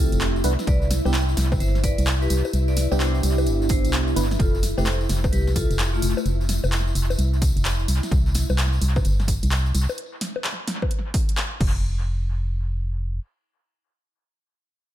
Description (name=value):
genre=UK garage, two-step garage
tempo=129 BPM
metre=4/4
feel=swing 64% on 16ths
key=unclear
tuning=A4 = 439 Hz
part: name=vibraphone with medium hard mallets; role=melody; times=0.0-6.2 s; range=A3 to G5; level=-31 LUFS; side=left 3 dB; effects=tape echo
part: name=ethereal airy pad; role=sustained chords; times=0.0-8.1 s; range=E4 to E5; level=-32 LUFS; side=right 1 dB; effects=ensemble chorus, built-in reverb, sidechain pumping
part: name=FM electric piano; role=stabs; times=0.0-4.9 s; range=A3 to B4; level=-27 LUFS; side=right 3 dB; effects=chorus, phaser, tape echo
part: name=organ-like FM bass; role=bass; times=0.0-13.2 s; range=F1 to C2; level=-22 LUFS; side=equal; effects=none
part: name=house drum kit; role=drums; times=0.1-11.7 s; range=bongos, crash cymbal, handclaps, hi-hat, snare drum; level=-29 LUFS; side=left 1 dB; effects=overdrive, analog delay
part: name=tambourine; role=percussion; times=0.1-10.0 s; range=none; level=-35 LUFS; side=left 3 dB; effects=none
part: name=electronic kick drum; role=drums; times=0.7-11.7 s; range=none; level=-23 LUFS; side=equal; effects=overdrive
room=little or no reverb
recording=echo-heavy mix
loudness=-20 LUFS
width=side -12 dB against mid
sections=0.0-11.8 A section; 11.8-14.9 B section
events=drop 0.0-11.8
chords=0.4 Cmaj9; 4.4 Fmaj7; 7.9 C; 11.6 N.C.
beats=0.21 | 0.68 1.14 1.60 2.07 | 2.54 3.00 3.47 3.93 | 4.40 4.86 5.33 5.79 | 6.26 6.72 7.19 7.65 | 8.12 8.58 9.05 9.51 | 9.98 10.44 10.91 11.37 | 11.84 12.30 12.77